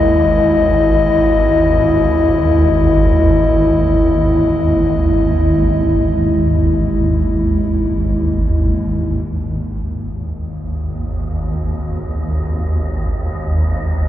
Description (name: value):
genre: dark ambient drone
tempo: free time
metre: none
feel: none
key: G# minor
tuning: A4 = 440 Hz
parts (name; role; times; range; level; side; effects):
- dark analog pad; sustained chords; 0.0-14.1 s; G#3 to D#5; -15 LUFS; left 1 dB; chorus
- swarming drone; drone; 0.0-14.1 s; G#1 to D#2; -16 LUFS; equal; built-in reverb
- wind-like tuned noise texture; texture; 11.0-14.1 s; D#4 to D#5; -35 LUFS; right 1 dB; built-in reverb
room: wet cathedral reverb, RT60 4.7 s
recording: dark, warm production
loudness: -13 LUFS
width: side -12 dB against mid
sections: 0.0-9.3 A section; 9.3-14.1 B section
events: fade-in on synth texture 9.3-14.1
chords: 0.0 Emaj7; 9.3 G#madd9